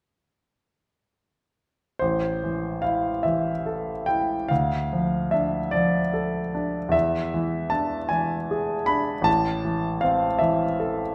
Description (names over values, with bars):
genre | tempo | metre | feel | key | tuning
classical, romantic nocturne for solo piano | 47-53 BPM (dotted quarters) | 6/8 | rubato | A minor | A4 = 441 Hz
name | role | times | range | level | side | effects
clear grand piano | solo | 2.0-11.1 s | A1 to B5 | -25 LUFS | equal | none
room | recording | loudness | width
moderate recital hall reverb, RT60 1.3 s | none | -25 LUFS | mono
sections
2.0-11.1 A section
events
none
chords
2.0 Am; 4.5 Dm; 6.9 E7; 9.3 Am